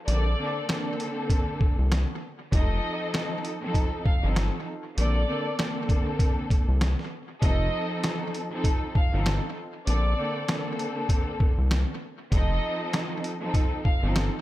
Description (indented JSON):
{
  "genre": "hip hop, boom-bap hip-hop",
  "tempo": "98 BPM",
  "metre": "4/4",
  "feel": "swing 58% on 16ths",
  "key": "Bb major",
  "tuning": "A4 = 440 Hz",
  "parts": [
    { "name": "warm studio violin section", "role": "melody", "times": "0.1-14.0 s", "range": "D5 to F5", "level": "-34 LUFS", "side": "equal", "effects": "high-pass filter, low-pass filter, dub echo" },
    { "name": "warm studio string section", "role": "accompaniment", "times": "0.1-14.4 s", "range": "D3 to A4", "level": "-31 LUFS", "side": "equal", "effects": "cassette tape, high-pass filter, low-pass filter" },
    { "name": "smooth gliding synth bass", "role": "bass", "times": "0.1-14.3 s", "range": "F1 to C2", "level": "-24 LUFS", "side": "equal", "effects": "none" },
    { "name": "trip hop sampler-style drum kit", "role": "drums", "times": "0.1-14.3 s", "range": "hi-hat, kick drum, snare drum", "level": "-26 LUFS", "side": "equal", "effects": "none" }
  ],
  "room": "digital ambience",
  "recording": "echo-heavy mix",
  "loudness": "-24 LUFS",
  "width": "side -15 dB against mid",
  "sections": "0.0-14.4 A section",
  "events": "none",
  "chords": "0.1 Bbmaj9; 2.5 F7; 5.0 Bbmaj9; 7.4 F7; 9.9 Bbmaj9; 12.3 F7"
}